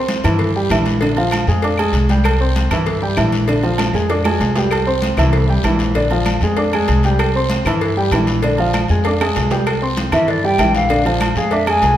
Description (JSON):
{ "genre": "latin, salsa", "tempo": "194 BPM", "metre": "4/4", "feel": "straight", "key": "C major", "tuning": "A4 = 440 Hz", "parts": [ { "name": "dark concert grand piano", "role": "accompaniment", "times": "0.0-11.9 s", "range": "D3 to D6", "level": "-18 LUFS", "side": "equal", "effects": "none" }, { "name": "agogo bells and timbales", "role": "percussion", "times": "0.1-12.0 s", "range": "none", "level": "-24 LUFS", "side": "right 4 dB", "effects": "none" }, { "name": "congas", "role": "percussion", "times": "0.1-12.0 s", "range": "none", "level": "-25 LUFS", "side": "equal", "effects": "none" }, { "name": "cowbell", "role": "percussion", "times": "0.1-12.0 s", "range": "none", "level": "-25 LUFS", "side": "left 1 dB", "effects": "none" }, { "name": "guiro", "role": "percussion", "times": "0.1-12.0 s", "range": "none", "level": "-31 LUFS", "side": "left 5 dB", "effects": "none" }, { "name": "upright bass", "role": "bass", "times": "0.2-12.0 s", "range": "Bb1 to G2", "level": "-19 LUFS", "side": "equal", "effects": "none" }, { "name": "claves", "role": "percussion", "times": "0.2-11.8 s", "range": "none", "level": "-32 LUFS", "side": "left 2 dB", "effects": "none" }, { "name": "mellow hollow silver concert flute", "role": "melody", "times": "10.1-12.0 s", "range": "D5 to Ab5", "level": "-17 LUFS", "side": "equal", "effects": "none" } ], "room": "wet recital hall reverb, RT60 1.4 s", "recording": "recorded in a church or concert hall", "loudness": "-14 LUFS", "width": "side -12 dB against mid", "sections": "0.0-9.7 A section; 9.7-12.0 B section", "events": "drum fill 3.8-4.7, 9.0-9.7; flute solo 9.7-12.0", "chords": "0.0 C; 1.0 Bb7; 2.3 C; 3.5 Bb7; 4.7 C; 6.0 Bb7; 7.2 C; 8.4 Bb7; 9.7 C; 10.9 Bb7" }